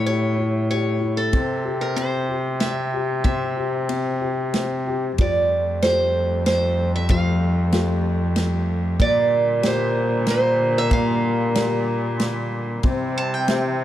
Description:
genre	acoustic folk-pop ballad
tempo	94 BPM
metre	3/4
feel	straight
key	F major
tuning	A4 = 441 Hz
part	picked acoustic archtop guitar	melody	0.0-13.8 s	A4 to A5	-23 LUFS	right 2 dB	none
part	dark upright piano	accompaniment	0.0-13.8 s	F3 to E5	-27 LUFS	left 6 dB	none
part	warm cello	bass	0.0-13.8 s	F2 to C3	-23 LUFS	equal	none
part	natural country drum kit	drums	1.3-13.6 s	kick drum, ride cymbal, snare drum	-22 LUFS	right 1 dB	none
part	warm chamber string section	sustained chords	5.2-13.8 s	D3 to C4	-30 LUFS	left 2 dB	none
room	light reverb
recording	dark, warm production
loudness	-19 LUFS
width	side -12 dB against mid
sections	0.0-5.2 A section; 5.2-13.8 B section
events	none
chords	0.0 A7; 1.3 C; 5.2 Fadd9; 9.0 Bb6; 12.8 C

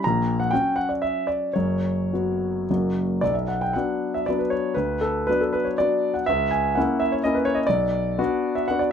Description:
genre	classical, romantic triple-time dance for piano with dotted rhythms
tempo	100-134 BPM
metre	3/4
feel	rubato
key	B minor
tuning	A4 = 439 Hz
part	warm concert grand piano	solo	0.0-8.9 s	F#1 to A#5	-21 LUFS	left 1 dB	none
room	moderate studio ambience, RT60 0.5 s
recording	none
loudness	-21 LUFS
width	side -8 dB against mid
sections	0.0-3.2 A section; 3.2-8.9 B section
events	none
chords	0.0 F#/A#; 1.5 F#sus4; 2.7 F#; 3.2 Bm; 4.8 Bm/D; 6.3 A#dim/C#; 7.7 Bm

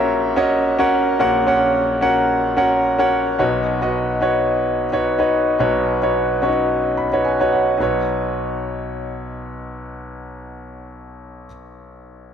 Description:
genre	pop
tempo	109 BPM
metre	4/4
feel	swing 55% on 16ths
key	B major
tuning	A4 = 441 Hz
part	clear concert grand piano	solo	0.0-12.3 s	A#1 to B5	-17 LUFS	equal	none
room	wet lush hall reverb, RT60 2.3 s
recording	none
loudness	-16 LUFS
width	side -8 dB against mid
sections	0.0-3.4 A section; 3.4-7.8 B section; 7.8-10.0 C section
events	grand piano fill 6.7-7.8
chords	0.0 F#/A#; 3.4 Badd9

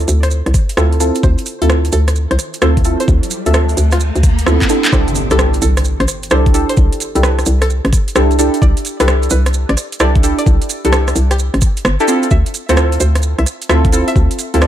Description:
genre	UK garage, two-step garage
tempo	130 BPM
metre	4/4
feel	swing 66% on 16ths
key	C major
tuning	A4 = 442 Hz
part	string-like resonator pluck	melody	0.0-14.7 s	F4 to E5	-24 LUFS	equal	chorus, dub echo
part	deep mellow chord stab	stabs	0.0-14.7 s	C4 to E5	-18 LUFS	right 1 dB	chorus, ping-pong delay
part	hollow knocking FM bass	bass	0.0-14.7 s	G1 to D2	-13 LUFS	equal	none
part	garage drum kit	drums	0.0-14.7 s	handclaps, hi-hat, rim click	-20 LUFS	right 1 dB	overdrive
part	maracas	percussion	0.0-14.7 s	none	-25 LUFS	right 7 dB	none
part	electronic kick drum	drums	0.5-14.3 s	none	-13 LUFS	equal	overdrive
part	riser and impact	sound effects	2.3-6.8 s	none	-24 LUFS	equal	none
room	light reverb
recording	dark, warm production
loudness	-11 LUFS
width	side -11 dB against mid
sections	0.0-4.9 A section; 4.9-14.7 B section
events	filter sweep on synth stab 0.0-4.9; riser 2.3-4.9; drum fill 4.6-4.9; drop 4.9-14.7; impact 4.9-6.8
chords	0.0 Dm9; 4.9 C69; 12.1 Dm9

